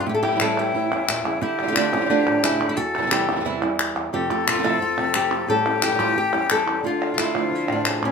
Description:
flamenco; 177 BPM; 4/4; straight; A4 = 439 Hz
flamenco guitar; melody; 0.0-8.1 s; E2 to A4; -23 LUFS; left 1 dB
breathy bright jazz flute; second line; 0.0-8.1 s; E4 to A4; -26 LUFS; left 3 dB
flamenco guitar; stabs; 0.0-8.1 s; E2 to F4; -27 LUFS; right 6 dB
palmas hand claps; percussion; 0.2-8.1 s; -26 LUFS; left 1 dB
moderate studio reverb, RT60 0.6 s; minimal, uncompressed stereo recording; -19 LUFS; side -5 dB against mid
0.0-8.1 A section
0.1 A7; 1.4 Dm; 2.8 C/E; 4.1 F; 5.5 A7; 6.8 Dm

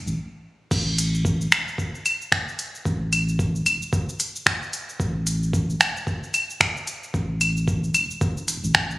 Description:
organic downtempo; 112 BPM; 4/4; swing 60% on 16ths; A4 = 440 Hz
warm sub bass; bass; 0.1-9.0 s; E1 to A1; -25 LUFS; equal
organic electronic drum kit; drums; 0.1-9.0 s; cabasa, claves, crash cymbal, finger snaps, hi-hat; -21 LUFS; equal
electronic kick drum; drums; 0.7-8.9 s; -25 LUFS; equal
light reverb; recorded on a phone in the room, studio reverb; -21 LUFS; side -19 dB against mid
0.7-9.0 A section
stop 0.2-0.7

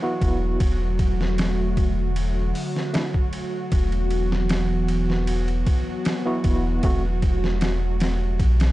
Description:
trip hop; 77 BPM; 4/4; straight; A4 = 437 Hz
overdriven tine electric piano; accompaniment; 0.0-7.0 s; A3 to F#4; -28 LUFS; equal; tremolo, tape echo
warbly tape-like pad; sustained chords; 0.0-8.7 s; C3 to F#4; -27 LUFS; equal; chorus, built-in reverb
bowed-like drone; texture; 0.0-8.7 s; F#4; -36 LUFS; right 2 dB; built-in reverb
soft dub sub bass; bass; 0.2-8.7 s; E1 to B1; -23 LUFS; equal; tube saturation
trip hop sampler-style drum kit; drums; 0.2-8.7 s; hi-hat, kick drum, ride cymbal, snare drum; -24 LUFS; equal; overdrive
digital ambience; dry, gritty hardware recording, vinyl crackle, nothing above 10.7 kHz; -20 LUFS; side -17 dB against mid
0.0-8.7 A section
0.0 Esus2; 0.6 D/E; 3.7 Esus2; 6.8 F#dim/E

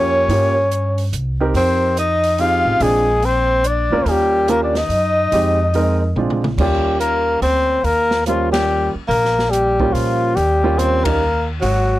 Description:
jazz, small-group swing and bop; 143 BPM; 3/4; swing 64% on 8ths; Eb mixolydian; A4 = 440 Hz
breathy trumpet; melody; 0.0-12.0 s; F4 to F5; -17 LUFS; left 3 dB
breathy tenor saxophone; second line; 0.0-12.0 s; F3 to F4; -23 LUFS; right 3 dB
warm concert grand piano; accompaniment; 0.0-11.2 s; G3 to Bb4; -21 LUFS; right 4 dB
upright bass; bass; 0.0-12.0 s; Ab1 to Bb2; -21 LUFS; equal; transformer saturation
open jazz drum kit; drums; 0.3-11.8 s; crash cymbal, hi-hat, kick drum, ride cymbal, snare drum, toms; -28 LUFS; right 1 dB
little or no reverb; dry, gritty hardware recording, transformer saturation; -14 LUFS; side -15 dB against mid
0.0-6.6 A section; 6.6-12.0 A section
drum fill 6.2-6.6; band accent 8.5, 11.0
0.3 Gm7b5; 1.1 Cm7; 1.5 Fm7; 2.8 Bb7; 4.1 Eb7; 5.3 Fm7; 6.2 Bb7; 6.6 Eb7

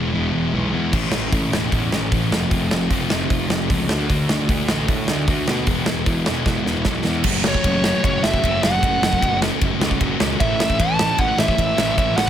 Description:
punk rock; 152 BPM; 4/4; straight; A4 = 440 Hz
sludgy distorted guitar; riff; 0.0-12.3 s; A2 to F#4; -21 LUFS; left 1 dB; overdrive
fuzz picked electric bass; bass; 0.0-12.3 s; E1 to B2; -25 LUFS; equal; overdrive
big rock drum kit; drums; 0.9-12.3 s; crash cymbal, hi-hat, kick drum, ride cymbal, snare drum; -21 LUFS; equal
bluesy overdriven lead guitar; melody; 7.5-12.3 s; C#5 to A5; -20 LUFS; right 1 dB; distortion
little or no reverb; -17 LUFS; side -10 dB against mid
0.0-7.3 A section; 7.3-12.3 B section
drum fill 6.5-7.3
0.0 E; 0.9 A; 2.3 F; 3.9 D; 5.7 E; 7.3 F#m; 10.4 A

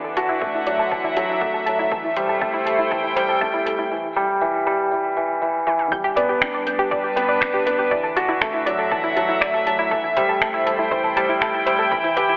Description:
piano and strings electronica; 120 BPM; 4/4; straight; G major; A4 = 441 Hz
rich studio string section; sustained chords; 0.0-12.4 s; D3 to G5; -25 LUFS; equal
analog pluck; arpeggios; 0.0-12.4 s; E4 to G6; -27 LUFS; equal; chorus, sidechain pumping, tape echo
felt-muted upright piano; riff; 0.0-12.4 s; E3 to G4; -25 LUFS; equal; tape echo
deep house drum kit; drums; 0.2-12.3 s; finger snaps, hi-hat, toms; -28 LUFS; equal; overdrive, high-pass filter on hats, high-pass filter on snare, high-pass filter on toms
electronic kick drum; drums; 0.4-12.0 s; -35 LUFS; equal; overdrive
round analog bass; bass; 5.9-12.4 s; E1 to D2; -54 LUFS; equal; sidechain pumping
wet lush hall reverb, RT60 1.7 s; high-pass filter, telephone sound; -21 LUFS; mono
0.0-5.9 A section; 5.9-12.4 B section
build-up 0.0-5.9; filter sweep on synth arpeggio sound 0.0-5.9; filter sweep 0.0-5.9; drum fill 5.7; drop 5.9-12.4
0.0 Dadd9; 1.9 Am7; 3.9 Em; 5.9 G; 7.9 Dadd9; 9.9 Am7

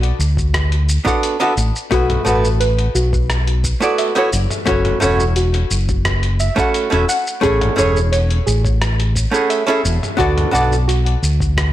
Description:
sunset chillout; 87 BPM; 4/4; straight; A4 = 439 Hz
soft round pluck; arpeggios; 0.0-11.2 s; F#4 to F#5; -23 LUFS; right 1 dB; chorus, ping-pong delay
fingered electric bass; bass; 0.0-11.7 s; E1 to D2; -16 LUFS; equal
dusty soul sampler-style drum kit; drums; 0.0-11.7 s; hi-hat, rim click, shaker, toms; -24 LUFS; left 1 dB; soft clipping on snare
electronic kick drum; drums; 0.4-11.7 s; -22 LUFS; equal
archtop guitar, miked and amplified; accompaniment; 1.0-10.8 s; A3 to F#5; -18 LUFS; moving between left 6 dB and right 4 dB; auto-pan, ping-pong delay
light reverb; blown-out, overdriven recording, overdrive; -14 LUFS; side -13 dB against mid
0.0-11.7 A section
0.0 D6; 1.9 B7sus4; 4.7 F#m7; 7.4 Amaj7; 10.2 D6

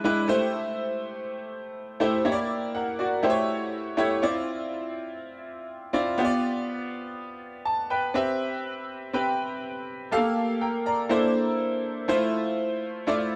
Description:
pop; 122 BPM; 4/4; swing 54% on 16ths; C major; A4 = 440 Hz
bright concert grand piano; solo; 0.0-13.4 s; G#3 to Bb5; -27 LUFS; equal; lush chorus
light reverb; -27 LUFS; mono
0.0-8.2 A section; 8.2-13.4 B section
0.3 Am7; 2.3 Em7b5; 3.2 A7; 4.2 Dm9; 6.2 G7; 8.2 Cmaj7; 10.1 Gm9; 11.1 C13; 12.1 Fmaj7

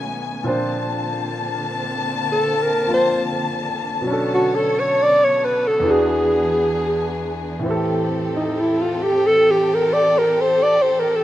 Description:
jazz ballad; 67 BPM; 4/4; swing 68% on 8ths; A4 = 440 Hz
clear concert grand piano; accompaniment; 0.0-11.2 s; E2 to C5; -25 LUFS; equal
warm symphonic string section; sustained chords; 0.0-11.2 s; D3 to A5; -24 LUFS; left 2 dB
mellow alto saxophone; melody; 2.3-11.2 s; Eb4 to D5; -16 LUFS; equal
small room ambience; rough home demo mix; -17 LUFS; side -13 dB against mid
0.0-11.2 A section
alto saxophone solo 0.0-11.2
0.5 Bbmaj9; 4.1 Bm9; 5.9 E7; 7.6 Am7

